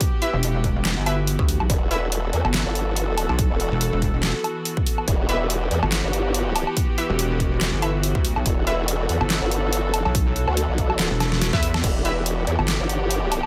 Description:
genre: heavy wobble dubstep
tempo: 142 BPM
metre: 4/4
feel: swing 55% on 16ths, half-time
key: E minor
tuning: A4 = 440 Hz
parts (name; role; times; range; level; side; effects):
- rich studio string section; sustained chords; 0.0-13.5 s; E3 to A4; -30 LUFS; equal; sidechain pumping
- dubstep drum kit; drums; 0.0-13.5 s; crash cymbal, handclaps, hi-hat, snare drum, woodblock; -28 LUFS; equal; overdrive
- electronic kick drum; drums; 0.0-11.9 s; none; -25 LUFS; equal; none
- orchestra-hit-like synth stab; stabs; 0.2-2.0, 5.3-8.8, 11.5-12.1 s; E4 to E5; -30 LUFS; equal; built-in reverb, delay
- pulsing pluck wobble bass; bass; 0.3-12.8 s; E1 to E2; -25 LUFS; equal; chorus, overdrive
- formant-sweep wobble bass; bass; 1.7-13.4 s; E1 to E2; -26 LUFS; equal; chorus, overdrive
room: light reverb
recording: none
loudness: -22 LUFS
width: mono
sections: 0.0-13.5 A section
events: drum fill 11.2-11.8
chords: 0.0 Emadd9

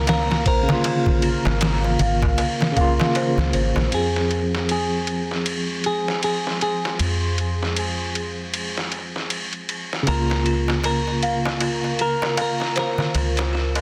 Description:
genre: trip hop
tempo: 78 BPM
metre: 4/4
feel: swing 58% on 16ths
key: F minor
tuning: A4 = 441 Hz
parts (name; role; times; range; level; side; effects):
- semi-hollow electric guitar; melody; 0.0-13.1 s; Ab4 to Bb4; -30 LUFS; equal; dub echo
- barky tine electric piano; accompaniment; 0.0-13.8 s; Db3 to Ab4; -28 LUFS; equal; tremolo, vintage 12-bit sampler grit, low-pass filter, tape echo
- deep dark ambient pad; sustained chords; 0.0-13.8 s; Ab4 to C6; -35 LUFS; equal; chorus, built-in reverb
- music box; arpeggios; 0.0-3.9, 10.1-13.8 s; F4 to F5; -32 LUFS; equal; vintage 12-bit sampler grit, tape echo
- deep dub fingered electric bass; bass; 0.0-13.8 s; Ab1 to F2; -27 LUFS; equal; none
- trip hop sampler-style drum kit; drums; 0.1-13.8 s; kick drum, ride cymbal, snare drum; -27 LUFS; equal; high-pass filter on cymbals, high-pass filter on kick, soft clipping on snare, high-pass filter on snare
- darbuka; percussion; 0.1-3.9, 10.1-13.8 s; none; -32 LUFS; equal; none
room: light reverb, digital ambience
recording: dense, heavily limited modern master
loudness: -22 LUFS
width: mono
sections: 0.0-3.9 A section; 3.9-13.8 B section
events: filter sweep on tine electric piano 3.9-13.8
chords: 0.0 Db6; 3.9 Fm; 10.1 Db6

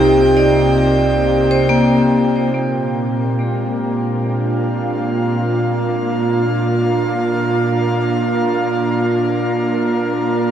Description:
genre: ambient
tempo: free time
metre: none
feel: none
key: Bb major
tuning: A4 = 444 Hz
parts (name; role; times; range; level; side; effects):
- airy breathy pad; sustained chords; 0.0-10.5 s; Bb2 to G5; -16 LUFS; equal; chorus, shimmer reverb
- vibraphone with hard mallets; arpeggios; 0.0-10.5 s; Ab3 to D5; -18 LUFS; equal; analog delay, shimmer reverb
- round analog bass; bass; 0.0-2.5 s; C2; -25 LUFS; equal; tube saturation
- bowed-like drone; drone; 0.0-10.5 s; Bb3 to F4; -26 LUFS; right 2 dB; built-in reverb
- wind-like tuned noise texture; texture; 1.1-10.5 s; Bb4 to Eb7; -30 LUFS; right 2 dB; built-in reverb, wide subtle chorus, shimmer reverb
room: wet lush hall reverb, RT60 2.7 s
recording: dreamy mix soaked in reverb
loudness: -14 LUFS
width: side -9 dB against mid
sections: 0.0-2.6 A section; 2.6-10.5 B section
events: none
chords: 0.0 Cm; 2.6 Bb

